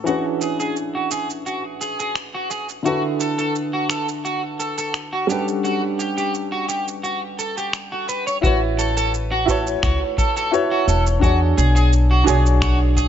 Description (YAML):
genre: sunset chillout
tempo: 86 BPM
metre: 4/4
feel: straight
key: A major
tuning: A4 = 445 Hz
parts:
  - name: warm baby grand piano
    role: accompaniment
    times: 0.0-13.1 s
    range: D3 to F#5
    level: -23 LUFS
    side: moving between left 3 dB and right 4 dB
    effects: auto-pan, tape echo
  - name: electric guitar at the edge of break-up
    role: arpeggios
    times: 0.1-13.1 s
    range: F#4 to C#5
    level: -24 LUFS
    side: right 1 dB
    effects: lush chorus, low-pass filter, tape echo
  - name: electronic shaker and finger snaps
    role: drums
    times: 0.1-13.1 s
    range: none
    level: -28 LUFS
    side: right 4 dB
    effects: overdrive, studio reverb
  - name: upright bass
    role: bass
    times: 8.4-13.1 s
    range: E1 to E2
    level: -17 LUFS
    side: equal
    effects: tube saturation
  - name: electronic kick drum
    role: drums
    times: 8.4-13.1 s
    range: none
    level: -21 LUFS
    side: equal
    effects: studio reverb
room: light reverb, small room ambience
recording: nothing above 7.6 kHz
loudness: -18 LUFS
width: side -10 dB against mid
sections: 0.0-8.4 A section; 8.4-13.1 B section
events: none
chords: 0.1 E13; 2.8 D69; 5.3 Gmaj9#11; 8.4 A6; 11.2 E13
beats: | 0.06 0.76 1.45 2.15 | 2.85 3.55 4.25 4.94 | 5.64 6.34 7.04 7.73 | 8.43 9.13 9.83 10.52 | 11.22 11.92 12.62